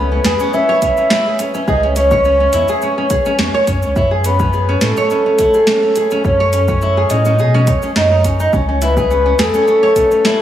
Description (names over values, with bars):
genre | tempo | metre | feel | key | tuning
organic downtempo | 105 BPM | 4/4 | straight | C# minor | A4 = 440 Hz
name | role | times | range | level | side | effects
breathy flute-like synth lead | melody | 0.0-10.4 s | A4 to E5 | -14 LUFS | equal | lush chorus, tape echo
nylon-string guitar | arpeggios | 0.0-10.4 s | C#4 to C#5 | -18 LUFS | right 1 dB | digital delay, slapback echo
warm sub bass | bass | 0.0-9.5 s | C#2 to B2 | -17 LUFS | equal | sidechain pumping
quartz singing bowl | texture | 0.0-10.4 s | B4 | -33 LUFS | right 4 dB | none
afro-pop drum kit | drums | 0.2-10.4 s | hi-hat, shaker, snare drum | -20 LUFS | right 1 dB | none
electronic kick drum | drums | 0.8-10.1 s | none | -20 LUFS | equal | none
room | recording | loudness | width
moderate concert hall reverb, RT60 1.9 s, digital ambience | big arena sound, small room ambience | -11 LUFS | side -11 dB against mid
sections
0.0-10.4 A section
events
none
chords
0.0 C#m7; 4.0 F#m; 8.5 C#m7